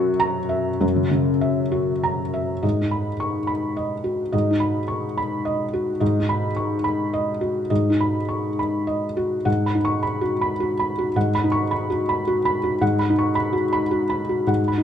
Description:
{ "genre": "neoclassical minimalist piano", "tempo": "97-111 BPM", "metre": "3/4", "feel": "rubato", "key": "G# minor", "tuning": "A4 = 437 Hz", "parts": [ { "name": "felt-muted upright piano", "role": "solo", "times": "0.0-14.8 s", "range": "F#2 to C#6", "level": "-20 LUFS", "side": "equal", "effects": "none" } ], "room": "light reverb", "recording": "close, detailed microphones", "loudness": "-20 LUFS", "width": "side -9 dB against mid", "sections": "0.0-2.6 A section; 2.6-9.5 B section; 9.5-14.8 C section", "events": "none", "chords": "0.0 F#7; 2.6 G#m7" }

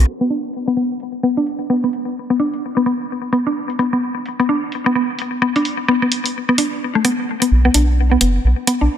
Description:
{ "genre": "minimal techno", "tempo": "129 BPM", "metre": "4/4", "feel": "swing 60% on 16ths", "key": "B minor", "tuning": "A4 = 440 Hz", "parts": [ { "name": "rubbery square bass", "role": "bass", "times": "0.0, 7.5-8.9 s", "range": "F#1 to B1", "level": "-13 LUFS", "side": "equal", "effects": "none" }, { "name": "electronic hi-hat", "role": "drums", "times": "0.1-8.8 s", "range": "none", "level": "-19 LUFS", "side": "right 1 dB", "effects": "overdrive, soft clipping on snare" }, { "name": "mallet-like synth pluck", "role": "riff", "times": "0.2-8.8 s", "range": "A3 to D4", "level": "-17 LUFS", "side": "left 1 dB", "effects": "chorus, ping-pong delay" } ], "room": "moderate lush hall reverb, RT60 2.1 s", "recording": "dense, heavily limited modern master, low-pass filter", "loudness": "-16 LUFS", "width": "side -10 dB against mid", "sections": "0.1-7.5 A section; 7.5-9.0 B section", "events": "filter sweep 0.1-7.5, 7.5-9.0; build-up 7.5-9.0", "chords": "0.1 N.C.; 7.5 B5" }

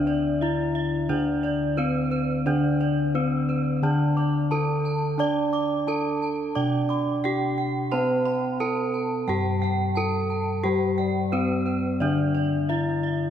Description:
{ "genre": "gamelan", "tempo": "88 BPM", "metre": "4/4", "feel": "straight", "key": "D slendro", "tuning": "A4 = 439 Hz", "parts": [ { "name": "gamelan-type bronze metallophone", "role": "melody", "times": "0.0-13.3 s", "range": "C4-45c to D5", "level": "-26 LUFS", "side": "equal", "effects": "none" }, { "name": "gamelan-type bronze metallophone", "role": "accompaniment", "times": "0.0-13.3 s", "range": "D3 to D4", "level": "-27 LUFS", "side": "left 1 dB", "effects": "none" }, { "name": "gamelan-type bossed gongs", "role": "arpeggios", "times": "0.0-13.1 s", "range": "C5-45c to D6", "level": "-33 LUFS", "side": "left 3 dB", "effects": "none" }, { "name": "gamelan-type bronze metallophone", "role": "arpeggios", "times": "0.0-13.3 s", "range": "C5-45c to D6", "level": "-33 LUFS", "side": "right 4 dB", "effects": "none" }, { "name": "gamelan-type bossed gongs", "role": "bass", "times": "0.0-13.3 s", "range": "D2 to D5", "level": "-30 LUFS", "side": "equal", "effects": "none" } ], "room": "wet church reverb, RT60 3.4 s", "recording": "recorded in a church or concert hall", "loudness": "-22 LUFS", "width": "side -9 dB against mid", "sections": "0.0-13.3 A section", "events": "none", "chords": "none" }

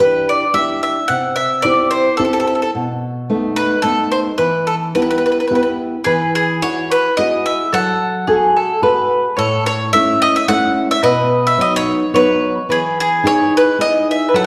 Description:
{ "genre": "italian folk, Italian serenade", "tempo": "109 BPM", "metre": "3/4", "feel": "straight", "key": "E minor, E major from 6.1 s", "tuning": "A4 = 440 Hz", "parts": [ { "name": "bowl-back mandolin", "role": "melody", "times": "0.0-14.4 s", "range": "G#4 to F#5", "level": "-18 LUFS", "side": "equal", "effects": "none" }, { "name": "nylon-string guitar", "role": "accompaniment", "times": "0.0-14.5 s", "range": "A2 to A4", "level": "-21 LUFS", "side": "equal", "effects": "none" }, { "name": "bowl-back mandolin", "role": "second line", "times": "6.1-14.5 s", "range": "G#4 to C#5", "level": "-20 LUFS", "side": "equal", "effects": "none" } ], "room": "wet recital hall reverb, RT60 1.3 s", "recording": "recorded in a church or concert hall", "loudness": "-16 LUFS", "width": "mono", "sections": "0.0-6.1 A section; 6.1-14.5 B section", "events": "none", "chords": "0.0 Em7; 1.1 C; 2.7 B7; 4.4 Em; 6.1 Eadd9; 7.7 F#madd9; 9.4 A; 11.0 B; 12.7 Emaj7" }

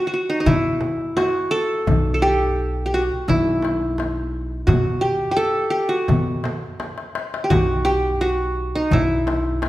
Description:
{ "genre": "Arabic maqam ensemble", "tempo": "85 BPM", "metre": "4/4", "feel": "straight", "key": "B maqam hijaz", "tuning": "A4 = 440 Hz", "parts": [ { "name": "qanun", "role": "melody", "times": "0.0-9.7 s", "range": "D#4 to A4", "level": "-20 LUFS", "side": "equal", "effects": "none" }, { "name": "darbuka", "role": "percussion", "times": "0.1-9.7 s", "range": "none", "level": "-26 LUFS", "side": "left 4 dB", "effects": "none" }, { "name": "upright bass", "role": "bass", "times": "0.5-9.7 s", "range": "B1 to B2", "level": "-23 LUFS", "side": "equal", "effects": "none" }, { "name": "frame drum", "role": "percussion", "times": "0.5-9.7 s", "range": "none", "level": "-28 LUFS", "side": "right 1 dB", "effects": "none" } ], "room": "wet recital hall reverb, RT60 1.6 s", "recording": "recorded in a church or concert hall", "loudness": "-18 LUFS", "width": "side -15 dB against mid", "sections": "0.0-9.7 A section", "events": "drum fill 6.8-7.5", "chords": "none" }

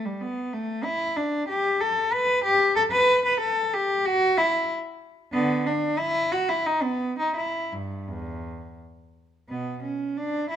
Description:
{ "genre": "classical, baroque-style suite movement for unaccompanied cello", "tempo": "83-95 BPM", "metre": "3/4", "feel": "rubato", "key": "E minor", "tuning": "A4 = 443 Hz", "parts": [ { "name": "dark cello", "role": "solo", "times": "0.0-10.6 s", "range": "E2 to B4", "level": "-22 LUFS", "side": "equal", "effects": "none" } ], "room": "moderate large studio reverb, RT60 1.3 s", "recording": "minimal, uncompressed stereo recording", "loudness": "-22 LUFS", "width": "side -10 dB against mid", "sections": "0.0-9.5 A section; 9.5-10.6 A section", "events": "none", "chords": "none" }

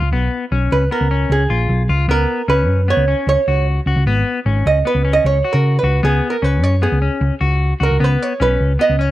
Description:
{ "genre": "progressive instrumental, band music in an uneven meter", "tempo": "152 BPM", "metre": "5/4", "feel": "straight", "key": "unclear", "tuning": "A4 = 439 Hz", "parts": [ { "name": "clean electric guitar", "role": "arpeggios", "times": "0.0-9.1 s", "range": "Cb4 to Gb4", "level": "-22 LUFS", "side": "left 6 dB", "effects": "none" }, { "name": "hollow-body short-scale picked electric bass", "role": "bass", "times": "0.0-9.1 s", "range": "Ab1 to Db3", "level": "-16 LUFS", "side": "equal", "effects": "none" }, { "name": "archtop guitar, miked and amplified", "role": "melody", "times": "0.7-9.1 s", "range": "Ab4 to Eb5", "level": "-18 LUFS", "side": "right 4 dB", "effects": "none" } ], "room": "little or no reverb", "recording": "dry, close 1970s-style studio recording", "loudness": "-14 LUFS", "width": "side -15 dB against mid", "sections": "0.0-9.1 A section", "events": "hollow-body jazz guitar solo 0.0-9.1", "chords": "0.0 Db7; 2.1 Cbsus2; 8.0 Db7(no3)" }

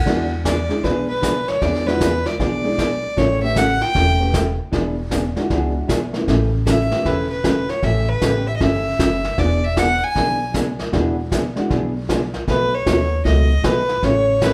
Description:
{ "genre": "country, western swing", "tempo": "155 BPM", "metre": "4/4", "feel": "swing 64% on 8ths", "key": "E mixolydian", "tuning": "A4 = 440 Hz", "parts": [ { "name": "honky-tonk upright piano", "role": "accompaniment", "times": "0.0-8.4, 10.9-13.1 s", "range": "G#3 to A4", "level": "-27 LUFS", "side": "equal", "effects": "none" }, { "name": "upright bass", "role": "bass", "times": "0.0-14.5 s", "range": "E1 to E2", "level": "-25 LUFS", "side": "equal", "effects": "none" }, { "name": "vintage hollow-body jazz guitar", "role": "accompaniment", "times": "0.1-14.5 s", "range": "B2 to G#4", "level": "-25 LUFS", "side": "equal", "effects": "none" }, { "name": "vintage brush drum kit", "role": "drums", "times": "0.1-14.5 s", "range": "brushed snare drum, hi-hat, kick drum, snare drum", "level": "-26 LUFS", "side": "equal", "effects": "none" }, { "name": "warm fiddle", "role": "melody", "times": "0.5-14.5 s", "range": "B4 to G#5", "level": "-23 LUFS", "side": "equal", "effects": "none" } ], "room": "moderate large studio reverb, RT60 0.8 s", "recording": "band playing live in one room", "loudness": "-19 LUFS", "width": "mono", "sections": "0.1-14.5 A section", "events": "none", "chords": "0.1 E7; 3.2 A9; 4.7 E9; 6.3 A9; 9.4 E7; 12.5 B9; 14.0 A7" }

